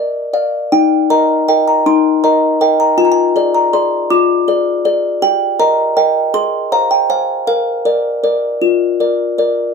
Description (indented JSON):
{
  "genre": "classical, lullaby for music box",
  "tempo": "53 BPM (dotted quarters)",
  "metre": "6/8",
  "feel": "straight",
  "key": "Eb major",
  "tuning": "A4 = 442 Hz",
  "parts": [
    { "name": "music box", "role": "solo", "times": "0.0-9.7 s", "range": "Eb4 to D6", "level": "-11 LUFS", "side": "left 1 dB", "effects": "none" }
  ],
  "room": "moderate studio reverb, RT60 0.6 s",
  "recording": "dark, warm production",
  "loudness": "-11 LUFS",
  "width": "side -5 dB against mid",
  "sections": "0.7-9.7 A section",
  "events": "none",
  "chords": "0.0 Bb; 0.7 Eb5; 3.0 Ddim/F; 5.2 Eb/G; 6.3 Fm/Ab; 7.5 Bb"
}